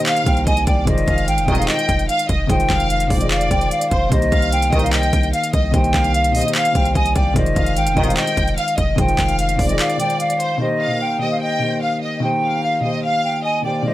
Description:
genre	hip hop, trap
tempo	148 BPM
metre	4/4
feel	half-time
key	C minor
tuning	A4 = 440 Hz
part	mellow hollow jazz flute	melody	0.0-13.9 s	Eb5 to Ab5	-21 LUFS	equal	none
part	warm studio violin section	second line	0.0-13.8 s	C5 to G5	-24 LUFS	equal	tape echo
part	dark concert grand piano	accompaniment	0.0-13.9 s	Eb3 to C5	-23 LUFS	left 1 dB	none
part	trap drum kit	drums	0.0-10.5 s	handclaps, hi-hat, kick drum	-21 LUFS	equal	none
part	warm 808-style bass	bass	0.3-9.8 s	F1 to C2	-20 LUFS	equal	none
part	mellow brass ensemble	stabs	1.5-1.8, 4.7-5.0, 8.0-8.3 s	C2 to Eb3	-24 LUFS	right 1 dB	none
room	small room ambience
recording	dry, gritty hardware recording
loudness	-15 LUFS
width	side -15 dB against mid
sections	0.0-10.6 A section; 10.6-13.9 B section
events	kick muted 9.8-10.6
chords	0.0 Cm7; 0.9 Fm7; 4.1 Cm7; 7.4 Fm7; 10.6 Cm7

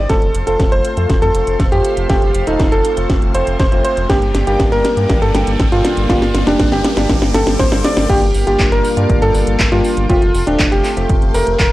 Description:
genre	italo disco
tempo	120 BPM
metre	4/4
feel	straight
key	unclear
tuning	A4 = 445 Hz
part	bright electric grand piano	melody	0.0-11.7 s	D4 to D5	-17 LUFS	right 1 dB	tape echo
part	string machine, full ensemble	sustained chords	0.0-11.7 s	Bb3 to D6	-24 LUFS	equal	ensemble chorus
part	round analog bass	bass	0.0-11.7 s	Eb1 to G2	-19 LUFS	equal	none
part	barky tine electric piano	stabs	0.1-11.6 s	G3 to C5	-22 LUFS	left 2 dB	overdrive, lush chorus, low-pass filter
part	electronic kick drum	drums	0.1-11.7 s	none	-17 LUFS	equal	studio ambience
part	house drum kit	drums	0.1-11.7 s	crash cymbal, handclaps, hi-hat, snare drum	-20 LUFS	equal	studio ambience
part	riser	sound effects	2.3-8.1 s	none	-30 LUFS	equal	none
room	light reverb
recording	dry, gritty hardware recording, transformer saturation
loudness	-12 LUFS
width	side -16 dB against mid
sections	0.1-8.1 A section; 8.1-11.7 B section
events	drum fill 0.1-8.1; filter sweep on tine electric piano 0.1-8.1; riser 2.3-8.1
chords	0.1 F; 4.1 Gm; 8.1 Gm7; 10.1 Fadd9

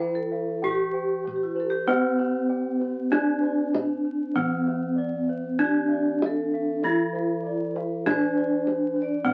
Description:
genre	Javanese gamelan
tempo	48 BPM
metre	4/4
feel	straight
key	D slendro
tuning	A4 = 440 Hz
part	gamelan-type bronze metallophone	melody	0.0-9.3 s	C4-40c to G4-20c	-27 LUFS	equal	none
part	vibraphone with medium mallets	second line	0.0-9.3 s	E4+40c to D5	-34 LUFS	equal	none
part	gamelan-type bronze metallophone	accompaniment	0.0-9.3 s	E3+40c to C4-40c	-37 LUFS	equal	none
part	gamelan-type bossed gongs	arpeggios	0.0-9.3 s	C5-40c to G5-20c	-41 LUFS	equal	none
part	gamelan-type bronze metallophone	arpeggios	0.0-9.3 s	C5-40c to G5-20c	-38 LUFS	equal	none
part	gamelan-type bossed gongs	bass	0.0-9.3 s	D2 to C5-40c	-34 LUFS	equal	none
part	kendang	percussion	0.7-9.3 s	none	-34 LUFS	equal	none
room	light reverb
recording	very old 78 rpm record, vinyl crackle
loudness	-25 LUFS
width	mono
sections	0.0-9.3 A section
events	none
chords	none

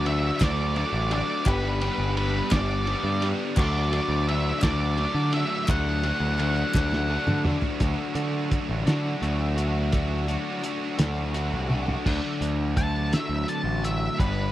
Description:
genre	indie rock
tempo	57 BPM (dotted quarters)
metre	6/8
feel	straight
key	unclear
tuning	A4 = 438 Hz
part	octave-fuzz lead guitar	melody	0.0-7.4, 12.8-14.5 s	B4 to A5	-29 LUFS	equal	distortion, slapback echo
part	bell-like tine electric piano	second line	0.0-7.4 s	F#4 to G4	-38 LUFS	left 4 dB	none
part	biting overdriven guitar	riff	0.0-14.5 s	G2 to F#4	-32 LUFS	right 7 dB	analog chorus, slapback echo
part	overdriven electric guitar	riff	0.0-14.5 s	G2 to F#4	-31 LUFS	left 7 dB	none
part	growling picked electric bass	bass	0.0-14.5 s	G1 to D3	-26 LUFS	equal	overdrive
part	cloth-damped thuddy drum kit	drums	0.1-14.4 s	crash cymbal, hi-hat, kick drum, ride cymbal, snare drum, toms	-28 LUFS	equal	none
part	group handclap	percussion	0.4-7.7 s	none	-39 LUFS	left 6 dB	none
room	little or no reverb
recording	dry, close 1970s-style studio recording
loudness	-23 LUFS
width	side -14 dB against mid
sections	0.0-7.8 A section; 7.8-12.1 B section; 12.1-14.5 C section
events	drum fill 6.7-7.8, 11.7-12.1; lead electric guitar solo 12.1-14.5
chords	0.0 D; 1.5 G; 3.6 D

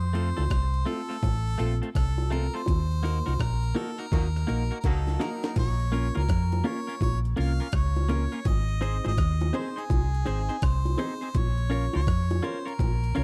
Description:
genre	roots reggae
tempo	83 BPM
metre	4/4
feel	swing 64% on 16ths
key	Bb minor from 5.6 s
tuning	A4 = 440 Hz
part	bright harmonica	melody	0.0-13.2 s	Ab4 to F5	-38 LUFS	equal	dub echo
part	hollow-body short-scale fingered electric bass	bass	0.0-13.2 s	Ab1 to F2	-28 LUFS	equal	none
part	breakbeat sampler-style drum kit	drums	0.0-13.2 s	crash cymbal, hi-hat, kick drum, rim click, snare drum	-30 LUFS	equal	none
part	clean electric guitar	accompaniment	0.1-13.2 s	A3 to Db5	-37 LUFS	equal	dub echo
part	dark upright piano	stabs	0.1-13.2 s	A3 to Db5	-37 LUFS	equal	none
part	bongos	percussion	0.4-13.0 s	none	-39 LUFS	equal	none
part	warm horn section	second line	4.1-5.5 s	Gb3 to Eb4	-42 LUFS	equal	dub echo
room	little or no reverb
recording	dry, close 1970s-style studio recording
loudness	-27 LUFS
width	mono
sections	0.0-5.6 A section; 5.6-13.2 B section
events	band accent 2.7-5.6; drum fill 4.8-5.6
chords	0.0 F; 2.7 Ebm; 5.6 Bbm; 8.5 Ab; 11.3 Bbm

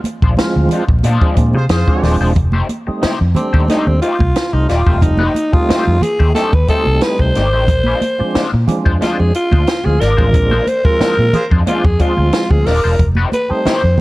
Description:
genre	funk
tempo	90 BPM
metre	4/4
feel	straight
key	unclear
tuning	A4 = 440 Hz
part	compact cocktail drum kit	drums	0.0-13.8 s	hi-hat, kick drum, snare drum	-16 LUFS	equal	none
part	congas	percussion	0.0-14.0 s	none	-22 LUFS	right 2 dB	none
part	electric guitar at the edge of break-up	accompaniment	0.1-13.8 s	Ab3 to D5	-23 LUFS	left 4 dB	wah
part	vintage muted fingered electric bass	bass	0.2-14.0 s	Eb1 to C3	-15 LUFS	equal	none
part	percussive tonewheel organ	stabs	0.4-14.0 s	F3 to F4	-21 LUFS	right 2 dB	overdrive, chorus vibrato, slow rotary speaker
part	warm horn section	second line	1.6-2.1, 11.3-11.4 s	F4 to C5	-23 LUFS	equal	none
part	growling alto saxophone	melody	3.4-14.0 s	C4 to C5	-17 LUFS	equal	none
room	studio reverb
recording	dark, warm production, vinyl crackle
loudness	-11 LUFS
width	side -19 dB against mid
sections	0.0-2.4 A section; 2.4-14.0 B section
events	band accent 0.0-2.4, 10.3-13.0; alto saxophone solo 2.4-14.0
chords	0.0 Bb9; 2.4 F9; 7.7 Bb9; 13.0 F9

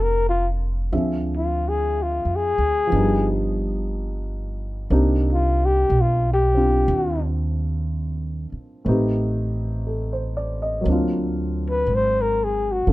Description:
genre	jazz ballad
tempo	60 BPM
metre	4/4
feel	swing 66% on 8ths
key	unclear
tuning	A4 = 438 Hz
part	breathy flugelhorn	melody	0.0-12.9 s	F4 to C5	-21 LUFS	left 2 dB	none
part	dark grand piano	accompaniment	0.0-12.9 s	F3 to E5	-26 LUFS	equal	none
part	upright bass	bass	0.0-12.9 s	F1 to F2	-23 LUFS	equal	none
room	little or no reverb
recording	none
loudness	-19 LUFS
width	side -17 dB against mid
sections	0.0-12.9 A section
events	flugelhorn solo 0.0-12.9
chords	0.0 Bbmaj9; 0.9 Dm7b5; 2.9 G7b13; 4.9 Cm9; 8.9 Am7b5; 10.9 D7alt

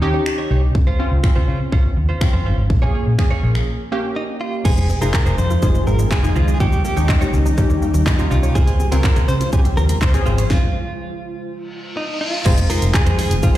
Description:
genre	dance-pop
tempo	123 BPM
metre	4/4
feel	straight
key	F minor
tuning	A4 = 435 Hz
part	funky polysynth comp	accompaniment	0.0-13.6 s	Ab3 to Ab4	-25 LUFS	left 1 dB	chorus, sidechain pumping
part	direct-recorded clean electric guitar	riff	0.0-13.6 s	Db4 to Db5	-30 LUFS	right 5 dB	wide subtle chorus
part	vintage muted fingered electric bass	bass	0.0-13.6 s	F1 to Eb3	-17 LUFS	equal	sidechain pumping
part	pop drum kit	drums	0.3-13.6 s	crash cymbal, finger snaps, handclaps, hi-hat, kick drum, shaker, snare drum	-18 LUFS	equal	none
part	direct-recorded clean electric guitar	melody	4.2-13.6 s	Eb4 to C5	-25 LUFS	equal	tremolo, tape echo
part	ethereal airy pad	sustained chords	5.0-13.6 s	Db3 to C5	-27 LUFS	equal	ensemble chorus, built-in reverb, sidechain pumping
part	wide unison pluck	arpeggios	4.7-10.4 s	G3 to Eb5	-31 LUFS	equal	none
part	reverse cymbal	sound effects	11.7-12.5 s	none	-28 LUFS	left 1 dB	none
room	digital ambience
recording	played on a big sound system in a bare room, large studio reverb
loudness	-15 LUFS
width	side -14 dB against mid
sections	0.0-4.7 A section; 4.7-12.5 B section; 12.5-13.6 C section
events	break 3.7-4.7; stop 10.5-12.5; reverse cymbal 11.7-12.5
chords	0.0 Eb7; 0.7 Dbmaj7; 2.7 Bbm7; 4.7 Fm7; 6.6 Eb7; 8.6 Dbmaj7; 10.5 N.C.; 12.5 Fm7

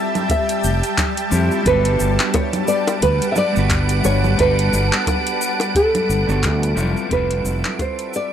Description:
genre	sunset chillout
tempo	88 BPM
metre	4/4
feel	swing 57% on 16ths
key	G major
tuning	A4 = 442 Hz
part	nylon-string guitar	melody	0.0-8.3 s	A4 to E5	-21 LUFS	right 1 dB	tape echo
part	clean electric guitar	accompaniment	0.0-8.3 s	G3 to B4	-26 LUFS	moving between left 6 dB and right 5 dB	auto-pan
part	shimmering ambient pad	sustained chords	0.0-8.3 s	G3 to A5	-23 LUFS	equal	chorus, built-in reverb
part	deep house drum kit	drums	0.2-8.3 s	cabasa, congas, handclaps, hi-hat	-24 LUFS	equal	none
part	electronic kick drum	drums	0.3-8.0 s	none	-24 LUFS	equal	overdrive
part	fingered electric bass	bass	0.6-7.6 s	F1 to F2	-19 LUFS	equal	none
part	wind-like tuned noise texture	texture	2.6-8.3 s	D7	-28 LUFS	right 2 dB	built-in reverb
part	bongos	percussion	2.3-8.0 s	none	-23 LUFS	left 3 dB	none
room	little or no reverb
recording	dry, gritty hardware recording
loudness	-16 LUFS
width	side -9 dB against mid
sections	0.0-8.3 A section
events	fade-out 5.3-8.3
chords	0.0 Fmaj9; 1.7 Gmaj9; 6.8 Fmaj9

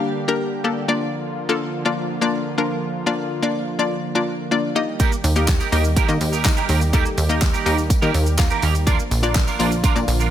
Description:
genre	dance-pop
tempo	124 BPM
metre	4/4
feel	straight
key	Bb major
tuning	A4 = 441 Hz
part	hollow square pluck	accompaniment	0.0-10.2 s	Bb3 to F5	-22 LUFS	left 4 dB	chorus, sidechain pumping
part	warm analog pad	sustained chords	0.0-10.3 s	D3 to G4	-28 LUFS	right 1 dB	chorus, sidechain pumping
part	clean electric guitar	riff	5.0-10.3 s	Bb3 to Bb4	-25 LUFS	right 8 dB	ensemble chorus
part	pop drum kit	drums	5.0-10.3 s	handclaps, hi-hat, kick drum, shaker, snare drum	-20 LUFS	equal	none
part	tambourine	percussion	5.0-10.2 s	none	-37 LUFS	left 5 dB	none
part	plucky analog bass	bass	5.2-10.3 s	Bb1 to Eb3	-20 LUFS	equal	sidechain pumping
room	light reverb, digital ambience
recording	none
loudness	-18 LUFS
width	side -10 dB against mid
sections	0.0-10.3 A section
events	none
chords	0.0 Gm; 0.9 Bb; 4.8 Eb; 8.9 Bb

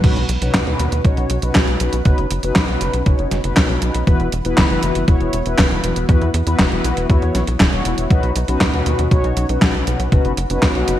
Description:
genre	italo disco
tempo	119 BPM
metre	4/4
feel	straight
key	B major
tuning	A4 = 439 Hz
part	mellow synth brass	stabs	0.0-11.0 s	B2 to C#5	-20 LUFS	left 1 dB	chorus, cassette tape, ping-pong delay
part	tight sequencer bass	bass	0.0-11.0 s	E1 to E2	-21 LUFS	equal	tube saturation
part	clean 12-bit digital drum machine	drums	0.0-11.0 s	crash cymbal, handclaps, hi-hat, snare drum	-20 LUFS	equal	gated reverb
part	electronic kick drum	drums	0.0-10.7 s	none	-16 LUFS	equal	none
room	moderate lush hall reverb, RT60 1.8 s, digital ambience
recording	bright 1980s-style digital production, vinyl crackle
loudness	-14 LUFS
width	side -12 dB against mid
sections	0.0-11.0 A section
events	none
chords	0.0 Badd9; 4.1 Esus2; 8.1 Badd9

